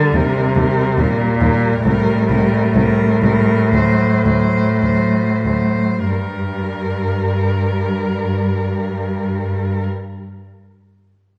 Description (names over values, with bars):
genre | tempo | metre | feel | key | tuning
classical, lyrical piece for cello ensemble | 44-73 BPM | 4/4 | rubato | G minor | A4 = 440 Hz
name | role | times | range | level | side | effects
rich cello | melody | 0.0-9.8 s | Bb4 to C5 | -26 LUFS | equal | none
warm cello | second line | 0.0-9.8 s | F#3 to G3 | -25 LUFS | equal | none
warm cello | accompaniment | 0.0-9.8 s | G2 to D3 | -19 LUFS | equal | none
warm cello | bass | 0.1-9.8 s | C2 to G2 | -24 LUFS | equal | none
room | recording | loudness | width
wet concert hall reverb, RT60 1.7 s | recorded in a church or concert hall | -17 LUFS | mono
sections
0.0-6.1 A section; 6.1-10.9 B section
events
slowing down 0.0-6.1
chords
0.1 Eb; 1.9 C5; 3.7 D7 (rootless); 6.1 Gm